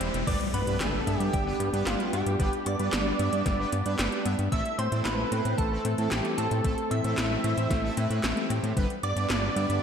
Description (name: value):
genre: synthwave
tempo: 113 BPM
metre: 4/4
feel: straight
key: unclear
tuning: A4 = 440 Hz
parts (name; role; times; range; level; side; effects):
- lush unison pad; sustained chords; 0.0-9.8 s; D3 to E4; -35 LUFS; equal; chorus, sidechain pumping
- analog pluck; arpeggios; 0.0-9.7 s; G3 to E4; -37 LUFS; left 4 dB; chorus, vintage 12-bit sampler grit, ping-pong delay
- analog synth brass; stabs; 0.0-9.8 s; A3 to E5; -35 LUFS; right 3 dB; chorus, slapback echo
- fat analog bass; bass; 0.0-9.8 s; E1 to A2; -30 LUFS; equal; none
- 80s electronic pad drums; drums; 0.0-9.8 s; crash cymbal, handclaps, hi-hat, snare drum; -33 LUFS; equal; overdrive, high-pass filter on hats, high-pass filter on snare, high-pass filter on cymbals, slapback echo
- riser and impact; sound effects; 0.0-2.4 s; none; -36 LUFS; left 1 dB; none
- wide unison lead; melody; 0.3-9.8 s; F4 to E5; -32 LUFS; right 1 dB; ping-pong delay, slapback echo
- soft synth bell; second line; 0.3-9.8 s; F5 to E6; -39 LUFS; right 2 dB; chorus, phaser, ping-pong delay, slapback echo
- electronic kick drum; drums; 0.3-8.9 s; none; -29 LUFS; equal; overdrive
room: wet lush hall reverb, RT60 2.0 s, digital ambience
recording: big arena sound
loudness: -25 LUFS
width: side -7 dB against mid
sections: 0.3-9.8 A section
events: riser 0.0; impact 0.3-2.4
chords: 0.3 G; 4.5 Am; 8.8 G